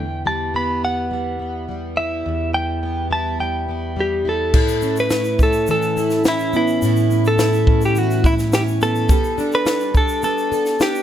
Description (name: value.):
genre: acoustic pop.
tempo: 105 BPM.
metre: 4/4.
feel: straight.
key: A mixolydian.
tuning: A4 = 439 Hz.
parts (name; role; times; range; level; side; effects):
direct-recorded clean electric guitar; melody; 0.0-11.0 s; E4 to B5; -21 LUFS; equal; tape echo.
fingerpicked plugged-in steel-string acoustic guitar; accompaniment; 0.0-11.0 s; E2 to A4; -20 LUFS; equal; double-tracked left and right.
compact cocktail drum kit; drums; 4.5-11.0 s; crash cymbal, kick drum, shaker, snare drum; -19 LUFS; equal; none.
room: small room ambience.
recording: none.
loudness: -16 LUFS.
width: side -10 dB against mid.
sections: 0.0-4.5 A section; 4.5-11.0 B section.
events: none.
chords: 0.0 Em; 4.5 Aadd9; 9.1 Gadd9.